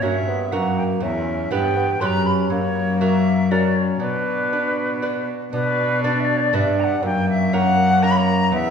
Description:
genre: classical, renaissance-style consort dance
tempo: 120 BPM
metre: 3/4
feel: straight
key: B harmonic minor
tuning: A4 = 442 Hz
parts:
  - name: bright wooden flute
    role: melody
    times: 0.0-8.7 s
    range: B4 to C6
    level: -22 LUFS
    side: left 2 dB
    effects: none
  - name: lute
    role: accompaniment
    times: 0.0-8.7 s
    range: E2 to B4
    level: -25 LUFS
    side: right 4 dB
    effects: none
  - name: warm bassoon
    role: accompaniment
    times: 0.0-8.7 s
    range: A#3 to D4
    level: -26 LUFS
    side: right 1 dB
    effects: none
  - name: rich cello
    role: bass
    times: 0.0-8.7 s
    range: E2 to B2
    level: -21 LUFS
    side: left 1 dB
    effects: none
room: wet recital hall reverb, RT60 1.7 s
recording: recorded in a church or concert hall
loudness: -17 LUFS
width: side -7 dB against mid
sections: 0.0-5.5 A section; 5.5-8.7 A section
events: none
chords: 0.0 F#; 1.0 Em; 2.5 F#; 4.0 Bm; 7.0 F#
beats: 0.03 0.52 | 1.02 1.52 2.02 | 2.51 3.01 3.51 | 4.02 4.52 5.03 | 5.53 6.03 6.53 | 7.03 7.53 8.03 | 8.53

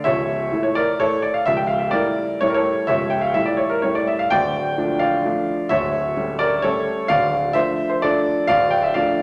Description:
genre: classical, piano waltz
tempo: 128 BPM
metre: 3/4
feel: uneven beats, rubato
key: D minor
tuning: A4 = 438 Hz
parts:
  - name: clear upright piano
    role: solo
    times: 0.0-9.2 s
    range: C#1 to G5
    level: -20 LUFS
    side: equal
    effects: none
room: wet recital hall reverb, RT60 1.3 s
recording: none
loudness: -20 LUFS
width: mono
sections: 0.0-9.2 A section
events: none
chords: 0.0 A/C#; 1.5 A7/C#; 4.3 Dm; 5.7 A7/D; 7.1 Dm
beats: | 0.05 0.52 0.99 | 1.46 1.92 2.41 | 2.88 3.35 3.83 | 4.31 4.77 5.25 | 5.71 6.16 6.64 | 7.09 7.55 8.03 | 8.49 8.94

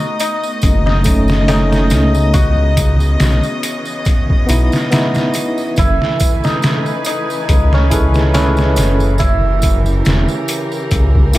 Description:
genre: trip hop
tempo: 70 BPM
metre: 4/4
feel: swing 55% on 16ths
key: F# dorian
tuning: A4 = 440 Hz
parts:
  - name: cimbalom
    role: melody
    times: 0.0-11.4 s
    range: C#4 to F#4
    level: -21 LUFS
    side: equal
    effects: vintage 12-bit sampler grit, tape echo
  - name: dark chamber string section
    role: sustained chords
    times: 0.0-11.4 s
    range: C#3 to G#5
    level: -23 LUFS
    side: equal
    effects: none
  - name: trip hop sampler-style drum kit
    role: drums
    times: 0.2-11.4 s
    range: hi-hat, kick drum, snare drum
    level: -16 LUFS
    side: equal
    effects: overdrive
  - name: tambourine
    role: percussion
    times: 0.2-11.4 s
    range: none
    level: -29 LUFS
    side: right 4 dB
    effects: none
  - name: dark detuned saw bass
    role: bass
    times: 0.6-11.4 s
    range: E1 to C#2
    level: -14 LUFS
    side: equal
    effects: none
  - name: bell-like tine electric piano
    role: accompaniment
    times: 1.0-11.4 s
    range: A3 to B4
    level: -19 LUFS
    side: equal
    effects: tremolo, tape echo
room: small room ambience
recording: none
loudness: -12 LUFS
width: side -16 dB against mid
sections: 0.0-11.4 A section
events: none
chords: 0.0 B9; 2.3 C#m9; 5.8 F#m11; 9.2 F#7b9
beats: 0.63 1.49 | 2.35 3.20 4.06 4.92 | 5.78 6.63 7.49 8.35 | 9.20 10.06 10.92

